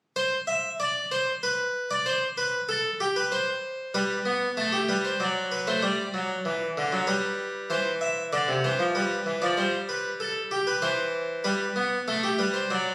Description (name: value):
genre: classical, baroque-style two-part invention for harpsichord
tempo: 96 BPM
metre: 3/4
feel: straight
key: unclear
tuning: A4 = 440 Hz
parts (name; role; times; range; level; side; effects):
- harpsichord; solo; 0.2-12.9 s; C3 to E5; -27 LUFS; equal; none
room: wet stone room reverb, RT60 1.2 s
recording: recorded on a phone in the room, studio reverb, compression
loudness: -27 LUFS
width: mono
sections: 0.2-12.9 A section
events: none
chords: 0.2 N.C.; 3.9 G; 5.2 D/F#; 5.8 G5; 7.1 G; 7.7 C/E; 9.0 G; 9.6 C5/G; 10.8 C/E; 11.5 G